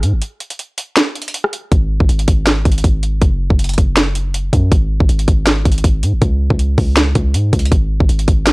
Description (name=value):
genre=hip hop, trap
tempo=160 BPM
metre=4/4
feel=half-time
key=unclear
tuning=A4 = 440 Hz
part: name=warm 808-style bass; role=bass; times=0.0-8.5 s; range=F#1 to G#2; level=-15 LUFS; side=equal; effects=none
part: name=trap drum kit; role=drums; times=0.0-8.5 s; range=hi-hat, kick drum, rim click, snare drum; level=-14 LUFS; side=equal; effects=none
room=little or no reverb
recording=dry, gritty hardware recording, cassette tape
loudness=-12 LUFS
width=side -26 dB against mid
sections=0.0-1.7 A section; 1.7-8.5 B section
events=break 0.2-1.7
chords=none